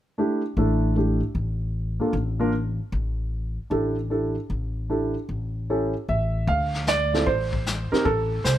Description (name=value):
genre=jazz piano trio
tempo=152 BPM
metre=4/4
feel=swing 66% on 8ths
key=unclear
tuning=A4 = 440 Hz
part: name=warm concert grand piano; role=melody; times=0.2-8.6 s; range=A3 to F5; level=-24 LUFS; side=right 2 dB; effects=none
part: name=upright bass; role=bass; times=0.6-8.6 s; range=A1 to D2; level=-26 LUFS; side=left 1 dB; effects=none
part: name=vintage brush drum kit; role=drums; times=6.5-8.6 s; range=brushed snare drum, hi-hat, kick drum, snare drum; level=-29 LUFS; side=left 3 dB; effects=none
room=little or no reverb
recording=close, detailed microphones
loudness=-22 LUFS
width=side -12 dB against mid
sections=0.2-6.5 A section; 6.5-8.6 B section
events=none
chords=0.2 A7sus4; 6.5 Dm7; 8.1 Am